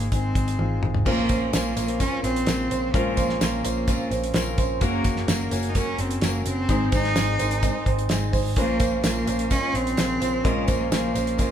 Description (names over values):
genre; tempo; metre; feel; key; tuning
piano-driven pop; 128 BPM; 4/4; straight; Bb minor; A4 = 437 Hz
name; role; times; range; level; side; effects
rich cello; melody; 0.0-11.5 s; Ab3 to Eb4; -27 LUFS; right 1 dB; none
warm concert grand piano; accompaniment; 0.0-11.5 s; Ab2 to Eb5; -30 LUFS; left 6 dB; none
vintage muted picked electric bass; bass; 0.0-11.4 s; Gb1 to Bb1; -28 LUFS; equal; none
damped 70s drum kit; drums; 0.0-11.5 s; crash cymbal, hi-hat, kick drum, snare drum, toms; -26 LUFS; equal; none
fingerpicked steel-string acoustic guitar; riff; 1.1-11.5 s; Bb2 to C5; -29 LUFS; right 5 dB; none
tambourine; percussion; 1.3-11.5 s; none; -38 LUFS; left 5 dB; none
room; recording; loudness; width
moderate large studio reverb, RT60 1.3 s; band playing live in one room; -21 LUFS; side -9 dB against mid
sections
0.0-1.1 A section; 1.1-11.5 B section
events
drum fill 0.6-1.1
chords
0.0 Ab; 1.1 Bbmadd9; 4.8 Gb; 6.7 Ab; 8.6 Bbmadd9